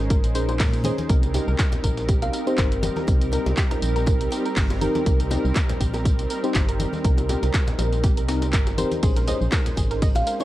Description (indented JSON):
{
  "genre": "deep house",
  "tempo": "121 BPM",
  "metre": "4/4",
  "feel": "swing 55% on 16ths",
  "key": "unclear",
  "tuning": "A4 = 438 Hz",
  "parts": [
    { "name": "warm analog pad", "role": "sustained chords", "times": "0.0-10.4 s", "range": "G3 to C5", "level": "-32 LUFS", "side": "right 2 dB", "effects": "chorus, sidechain pumping" },
    { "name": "organ-like FM bass", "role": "bass", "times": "0.0-10.2 s", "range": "G1 to Bb2", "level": "-25 LUFS", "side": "equal", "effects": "sidechain pumping" },
    { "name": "granular cloud pad", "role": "texture", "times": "0.0-10.4 s", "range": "C4 to Eb5", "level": "-34 LUFS", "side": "left 1 dB", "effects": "built-in reverb, sidechain pumping" },
    { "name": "soft round pluck", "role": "arpeggios", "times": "0.1-10.3 s", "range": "G4 to Bb5", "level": "-33 LUFS", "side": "right 2 dB", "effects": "chorus, sidechain pumping, tape echo" },
    { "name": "breakbeat sampler-style drum kit", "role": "drums", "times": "0.1-10.4 s", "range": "hi-hat, snare drum, tambourine", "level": "-39 LUFS", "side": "equal", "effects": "none" },
    { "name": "electronic kick drum", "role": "drums", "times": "0.1-10.1 s", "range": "none", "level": "-21 LUFS", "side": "equal", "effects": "vintage 12-bit sampler grit" },
    { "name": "punchy analog drum machine", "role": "drums", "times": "0.1-10.4 s", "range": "handclaps, hi-hat, ride cymbal, tambourine", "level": "-32 LUFS", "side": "equal", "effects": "vintage 12-bit sampler grit" },
    { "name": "bongos and congas", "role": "percussion", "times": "0.1-10.4 s", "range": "none", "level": "-32 LUFS", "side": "left 2 dB", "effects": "none" },
    { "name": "mellow FM electric piano", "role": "stabs", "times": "0.3-10.4 s", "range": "C4 to Db5", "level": "-28 LUFS", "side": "left 1 dB", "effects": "chorus, phaser, cassette tape, sidechain pumping, tape echo" },
    { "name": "thumb-piano-like synth pluck", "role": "melody", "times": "2.2-4.3, 10.2-10.4 s", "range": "Bb4 to F5", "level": "-29 LUFS", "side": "right 1 dB", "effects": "chorus, phaser, tape echo" }
  ],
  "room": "digital ambience",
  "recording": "none",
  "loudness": "-19 LUFS",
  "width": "side -15 dB against mid",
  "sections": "0.0-10.4 A section",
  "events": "none",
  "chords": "0.0 Bbm11; 1.1 Cm7; 9.0 Bbm11"
}